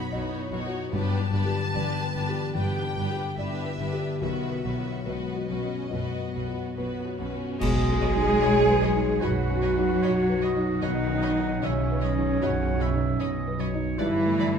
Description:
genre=cinematic, emotional film score for orchestra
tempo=70-78 BPM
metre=4/4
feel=rubato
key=B major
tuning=A4 = 440 Hz
part: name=rich studio violin section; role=melody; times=0.0-14.5 s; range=D#5 to B5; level=-38 LUFS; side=left 3 dB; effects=none
part: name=rich studio violin section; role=second line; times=0.0-14.5 s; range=F#4 to D#5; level=-38 LUFS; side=left 2 dB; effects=none
part: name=felt-muted upright piano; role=accompaniment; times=0.0-14.6 s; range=B1 to D#5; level=-31 LUFS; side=left 1 dB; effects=none
part: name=rich studio viola section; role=accompaniment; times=0.0-14.6 s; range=D#3 to G#4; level=-33 LUFS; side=right 4 dB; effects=none
part: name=concert harp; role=arpeggios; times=0.0-14.6 s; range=G2 to E4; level=-32 LUFS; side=left 8 dB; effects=none
part: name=rich studio cello section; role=bass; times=0.1-14.6 s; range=G2 to G#3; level=-32 LUFS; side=right 3 dB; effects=none
part: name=rich studio double bass section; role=bass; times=0.1-14.6 s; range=G1 to B1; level=-32 LUFS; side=right 5 dB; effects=none
part: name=cymbal swell, clash cymbals and concert bass drum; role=percussion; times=4.2-9.2 s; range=none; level=-34 LUFS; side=right 1 dB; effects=none
part: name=silver concert flute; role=second line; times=7.6-14.6 s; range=C#5 to G#5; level=-33 LUFS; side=left 1 dB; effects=none
part: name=warm oboe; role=second line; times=7.6-14.5 s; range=B4 to F#5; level=-36 LUFS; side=right 2 dB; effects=none
part: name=mellow French horn section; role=sustained chords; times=7.6-14.6 s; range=C#4 to G#4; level=-28 LUFS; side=left 2 dB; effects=none
room=moderate scoring stage reverb, RT60 1.8 s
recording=minimal, uncompressed stereo recording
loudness=-24 LUFS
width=side -7 dB against mid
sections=0.0-7.6 A section; 7.6-14.6 A section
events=band accent 7.6-8.4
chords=0.0 Badd9; 0.9 Gadd9; 4.2 Badd9; 14.0 Gadd9

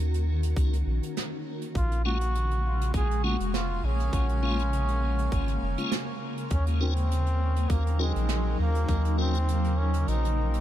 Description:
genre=ambient dub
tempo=101 BPM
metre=4/4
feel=swing 54% on 16ths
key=unclear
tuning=A4 = 438 Hz
part: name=granular cloud pad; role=sustained chords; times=0.0-10.6 s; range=Db3 to F5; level=-34 LUFS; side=equal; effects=built-in reverb
part: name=soft dub sub bass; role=bass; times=0.0-10.6 s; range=F1 to Eb2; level=-26 LUFS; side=equal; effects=none
part: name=soft brush drum kit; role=drums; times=0.1-10.6 s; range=hi-hat, snare drum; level=-37 LUFS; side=right 5 dB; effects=none
part: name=electronic kick drum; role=drums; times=0.6-9.0 s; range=none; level=-28 LUFS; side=equal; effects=overdrive
part: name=trombone with straight mute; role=melody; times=1.8-10.6 s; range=Ab3 to Ab4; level=-32 LUFS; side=equal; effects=dub echo
part: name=tonewheel organ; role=stabs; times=2.0-9.4 s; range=Ab3 to Bb4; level=-37 LUFS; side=left 2 dB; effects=chorus vibrato, fast rotary speaker, dub echo
room=little or no reverb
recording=none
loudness=-24 LUFS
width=side -12 dB against mid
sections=0.0-10.6 A section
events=kick drops out 10.1-10.6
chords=0.0 Ebm7; 1.8 Bbm7; 6.5 Ebm7

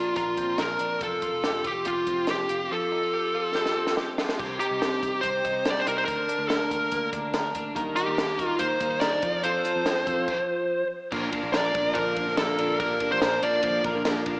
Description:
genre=jangly indie pop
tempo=143 BPM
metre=4/4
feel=straight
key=Bb major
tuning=A4 = 440 Hz
part: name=fuzz lead guitar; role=melody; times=0.0-13.8 s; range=F4 to D5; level=-29 LUFS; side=equal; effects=distortion, slapback echo
part: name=twelve-string electric guitar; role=arpeggios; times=0.0-14.4 s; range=Bb2 to Bb4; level=-34 LUFS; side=equal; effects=tube saturation, analog chorus, slapback echo
part: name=vintage muted picked electric bass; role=bass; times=0.0-14.4 s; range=F1 to F2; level=-43 LUFS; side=equal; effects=none
part: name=compact cocktail drum kit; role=drums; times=0.2-14.4 s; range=crash cymbal, hi-hat, kick drum, ride cymbal, snare drum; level=-33 LUFS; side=equal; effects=none
part: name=fingerpicked plugged-in steel-string acoustic guitar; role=accompaniment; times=7.7-14.4 s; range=Bb2 to Bb4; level=-36 LUFS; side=equal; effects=slapback echo
part: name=overdriven combo organ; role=accompaniment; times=11.1-14.4 s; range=Bb3 to G4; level=-35 LUFS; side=equal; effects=spring reverb, slapback echo
room=wet scoring stage reverb, RT60 1.9 s, studio ambience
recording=big arena sound, small speaker sound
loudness=-26 LUFS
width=mono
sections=0.0-4.4 A section; 4.4-11.1 B section; 11.1-14.4 C section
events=drum fill 3.6-4.4; stop 10.3-11.1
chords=0.0 Bbadd9; 1.0 Fadd9; 4.4 Cm; 6.1 Bb/D; 7.8 Eb; 9.2 F; 11.1 Bb

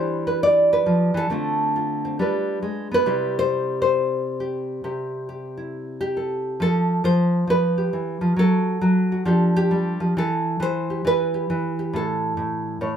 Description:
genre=solo jazz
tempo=136 BPM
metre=4/4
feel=swing 65% on 8ths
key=unclear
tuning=A4 = 440 Hz
part: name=nylon-string guitar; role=solo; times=0.0-13.0 s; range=A2 to D5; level=-20 LUFS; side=equal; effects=none
room=moderate club reverb, RT60 0.5 s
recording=none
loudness=-19 LUFS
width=side -8 dB against mid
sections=0.0-6.6 A section; 6.6-13.0 B section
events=none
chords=0.0 Em7; 1.3 Dm7; 2.2 G7b9; 3.1 C6; 6.6 Fmaj9; 8.4 N.C.; 9.3 F69; 10.1 Em; 11.9 A

